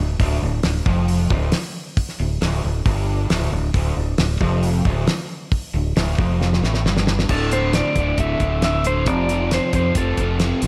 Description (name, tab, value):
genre	classic rock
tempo	135 BPM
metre	4/4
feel	straight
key	D minor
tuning	A4 = 439 Hz
part	raw garage guitar	riff	0.0-10.7 s	D2 to F3	-26 LUFS	equal	overdrive, slapback echo
part	modern bright fingered electric bass	bass	0.0-10.7 s	D1 to F2	-24 LUFS	equal	none
part	damped 70s drum kit	drums	0.2-10.7 s	crash cymbal, hi-hat, kick drum, snare drum	-25 LUFS	equal	none
part	clean lap steel guitar	melody	7.3-10.6 s	A4 to E5	-25 LUFS	equal	slapback echo
room	moderate scoring stage reverb, RT60 1.6 s, small room ambience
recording	big arena sound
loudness	-20 LUFS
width	mono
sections	0.0-7.3 A section; 7.3-10.7 B section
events	drum fill 6.4-7.3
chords	0.0 Dm; 7.3 Dsus2; 9.1 F